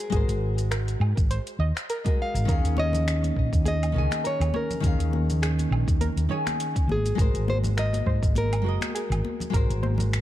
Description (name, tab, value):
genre	sunset chillout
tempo	102 BPM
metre	4/4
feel	swing 55% on 16ths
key	unclear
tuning	A4 = 441 Hz
part	nylon-string guitar	melody	0.0-10.2 s	Ab4 to F5	-31 LUFS	equal	ping-pong delay
part	nylon-string guitar	accompaniment	0.0-10.2 s	Eb3 to Ab5	-31 LUFS	moving between left 6 dB and right 7 dB	auto-pan, digital delay
part	deep house drum kit	drums	0.0-10.2 s	finger snaps, hi-hat, shaker, woodblock	-35 LUFS	equal	small room reverb
part	soft round pluck	arpeggios	0.1-10.1 s	Ab4 to Eb5	-37 LUFS	right 3 dB	chorus, cassette tape, digital delay
part	woody fretless electric bass	bass	0.1-10.2 s	Gb1 to Ab2	-24 LUFS	equal	none
part	electronic kick drum	drums	0.1-9.7 s	none	-24 LUFS	equal	small room reverb
part	congas	percussion	2.8-10.1 s	none	-35 LUFS	left 4 dB	none
room	small room ambience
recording	dark, warm production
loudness	-22 LUFS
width	side -13 dB against mid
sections	0.0-10.2 A section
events	none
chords	0.0 Ab9; 2.5 Eb9sus4; 6.9 Ab9